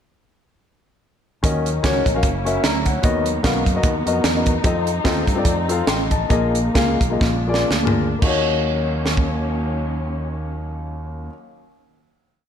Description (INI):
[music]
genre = uptempo gospel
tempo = 112-150 BPM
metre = 4/4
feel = swing 56% on 8ths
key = Eb minor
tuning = A4 = 438 Hz
[part]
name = dark grand piano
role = accompaniment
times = 1.4-11.3 s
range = Eb2 to C6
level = -22 LUFS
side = left 3 dB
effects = slapback echo
[part]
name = muted studio string section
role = sustained chords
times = 1.4-11.3 s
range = Eb3 to Fb4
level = -28 LUFS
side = left 1 dB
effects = none
[part]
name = fingered electric bass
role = bass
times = 1.4-11.3 s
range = Gb1 to G2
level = -24 LUFS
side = right 1 dB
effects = none
[part]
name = crisp fusion drum kit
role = drums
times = 1.4-9.3 s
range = crash cymbal, hi-hat, kick drum, snare drum, toms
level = -20 LUFS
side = right 1 dB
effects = none
[sound]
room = moderate scoring stage reverb, RT60 1.5 s, small room ambience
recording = big arena sound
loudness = -17 LUFS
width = side -8 dB against mid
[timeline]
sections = 1.4-8.2 breakdown; 8.2-12.5 final chord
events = slowing down 4.6-8.2; drum fill 7.2-8.2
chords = 1.4 Ebm7; 2.2 Gb7; 3.0 Bmaj7; 4.6 F7; 6.3 Bb7sus4; 7.2 Bb7; 8.2 Ebm7